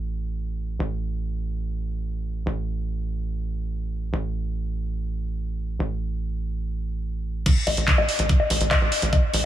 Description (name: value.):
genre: psychedelic trance.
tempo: 144 BPM.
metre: 4/4.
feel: straight.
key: unclear.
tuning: A4 = 438 Hz.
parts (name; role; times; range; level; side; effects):
tight sequencer bass; bass; 0.0-9.4 s; A1; -26 LUFS; right 1 dB; none.
electronic kick drum; drums; 7.5-9.2 s; none; -19 LUFS; right 1 dB; none.
techno drum kit; drums; 7.5-9.4 s; bongos, crash cymbal, handclaps, hi-hat; -22 LUFS; left 3 dB; none.
room: light reverb.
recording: none.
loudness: -23 LUFS.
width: side -12 dB against mid.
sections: 0.0-7.5 A section; 7.5-9.5 B section.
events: drop 7.5-9.5.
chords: none.